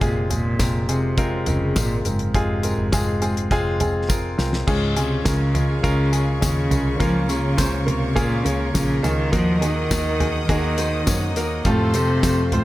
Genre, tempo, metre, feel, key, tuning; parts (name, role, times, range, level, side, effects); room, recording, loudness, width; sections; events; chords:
piano-driven pop; 103 BPM; 4/4; straight; A4 = 440 Hz
dark cello; melody; 0.0-12.6 s; Ab2 to F3; -23 LUFS; equal
clear baby grand piano; accompaniment; 0.0-12.6 s; Ab2 to Db5; -24 LUFS; equal
vintage muted fingered electric bass; bass; 0.0-12.6 s; F1 to Gb2; -25 LUFS; equal
damped 70s drum kit; drums; 0.0-12.6 s; crash cymbal, handclaps, hi-hat, kick drum, snare drum, toms; -24 LUFS; equal
tambourine; percussion; 0.0-12.4 s; -35 LUFS; left 5 dB
clear symphonic string section; sustained chords; 4.7-12.6 s; Ab4 to Eb6; -32 LUFS; left 1 dB
light reverb, studio reverb; -18 LUFS; side -16 dB against mid
0.0-4.7 A section; 4.7-12.6 B section
drum fill 4.1-4.7
0.0 Fm; 4.7 Db; 7.0 Bbm/Db; 9.3 Ebm; 11.7 F